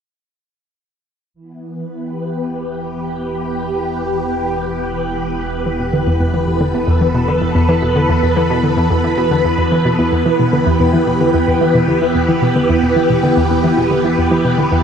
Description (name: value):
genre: ambient, sequencer-driven space music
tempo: 111 BPM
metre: 4/4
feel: straight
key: E minor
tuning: A4 = 440 Hz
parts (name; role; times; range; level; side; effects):
- phased string machine; sustained chords; 1.3-14.8 s; E3 to B4; -16 LUFS; equal; ensemble chorus, phaser
- fat analog bass; bass; 1.3-14.8 s; E1; -27 LUFS; equal; none
- hollow square pluck; riff; 5.7-14.8 s; E2 to E3; -16 LUFS; equal; chorus, cassette tape, ping-pong delay
- thumb-piano-like synth pluck; arpeggios; 10.0-14.8 s; E3 to B4; -21 LUFS; right 2 dB; chorus, auto-pan, ping-pong delay
room: wet huge ambient reverb, RT60 8.0 s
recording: none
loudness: -13 LUFS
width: side -7 dB against mid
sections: 1.3-10.0 A section; 10.0-14.8 B section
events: fade-in on analog synth bass 1.3-10.0; filter sweep on string machine 1.3-10.0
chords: 1.3 Em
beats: | 1.34 1.88 2.42 2.96 | 3.50 4.04 4.58 5.12 | 5.66 6.20 6.75 7.29 | 7.83 8.37 8.91 9.45 | 9.99 10.53 11.07 11.61 | 12.15 12.69 13.23 13.77 | 14.31